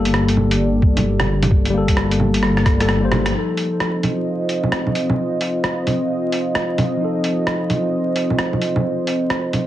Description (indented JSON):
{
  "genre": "future garage",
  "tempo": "131 BPM",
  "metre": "4/4",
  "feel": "swing 63% on 16ths",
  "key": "unclear",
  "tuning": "A4 = 440 Hz",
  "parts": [
    { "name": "mellow tine electric piano", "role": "accompaniment", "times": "0.0-9.7 s", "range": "F3 to C5", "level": "-22 LUFS", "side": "left 2 dB", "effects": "auto-pan, sidechain pumping, tape echo" },
    { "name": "dark analog pad", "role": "sustained chords", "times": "0.0-9.7 s", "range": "Bb3 to Eb5", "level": "-22 LUFS", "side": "right 1 dB", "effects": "chorus, sidechain pumping" },
    { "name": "dark detuned saw bass", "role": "bass", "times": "0.0-3.3 s", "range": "G1", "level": "-20 LUFS", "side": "equal", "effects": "sidechain pumping" },
    { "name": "lo-fi sampler-style drum kit", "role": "drums", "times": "0.1-9.6 s", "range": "bongos, hi-hat, rim click", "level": "-21 LUFS", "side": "right 1 dB", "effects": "none" },
    { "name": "electronic kick drum", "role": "drums", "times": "0.8-2.8 s", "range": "none", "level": "-16 LUFS", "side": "equal", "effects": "none" }
  ],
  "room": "moderate digital room reverb, RT60 0.9 s, digital ambience",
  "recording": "heavily compressed radio sound, vinyl crackle, nothing above 10.4 kHz",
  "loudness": "-16 LUFS",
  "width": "side -13 dB against mid",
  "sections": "0.0-3.3 A section; 3.3-9.7 B section",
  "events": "drum fill 2.4-3.3; band accent 3.2",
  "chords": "0.0 Gmadd9; 3.3 F7"
}